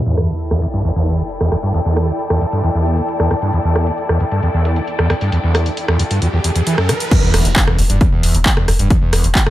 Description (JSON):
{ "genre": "driving peak-time techno", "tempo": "134 BPM", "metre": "4/4", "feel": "straight", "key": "E minor", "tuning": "A4 = 441 Hz", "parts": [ { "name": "sub drop, riser and impact", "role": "sound effects", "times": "0.0-8.9 s", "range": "none", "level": "-25 LUFS", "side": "equal", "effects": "none" }, { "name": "warm symphonic string section", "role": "texture", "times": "0.0-7.1 s", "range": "E4 to G5", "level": "-23 LUFS", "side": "left 2 dB", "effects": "sidechain pumping" }, { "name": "screaming distorted acid line", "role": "riff", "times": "0.1-9.5 s", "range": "D2 to E3", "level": "-16 LUFS", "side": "equal", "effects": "distortion, lush chorus, sidechain pumping" }, { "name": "techno drum kit", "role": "drums", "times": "0.2-9.5 s", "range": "crash cymbal, handclaps, hi-hat, rim click", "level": "-20 LUFS", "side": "right 1 dB", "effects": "overdrive, studio reverb" }, { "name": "electronic kick drum", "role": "drums", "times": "7.1-9.4 s", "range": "none", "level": "-14 LUFS", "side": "equal", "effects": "overdrive, studio reverb" }, { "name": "warm sub bass", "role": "bass", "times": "7.2-9.5 s", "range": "E1", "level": "-18 LUFS", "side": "equal", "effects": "tube saturation, sidechain pumping, low-pass filter" } ], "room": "light reverb", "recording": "low-pass filter", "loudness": "-13 LUFS", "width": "side -14 dB against mid", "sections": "0.0-7.1 A section; 7.1-9.5 B section", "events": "impact 0.0-1.7, 7.1-8.9; filter sweep on acid bass 0.0-7.1; filter sweep 0.0-7.1; riser 4.9-7.1; drop 7.1-9.5", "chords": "0.0 Em; 7.1 N.C.", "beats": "0.40 0.84 1.29 | 1.74 2.19 2.64 3.08 | 3.53 3.98 4.43 4.88 | 5.32 5.77 6.22 6.67 | 7.11 7.56 8.01 8.46 | 8.90 9.35" }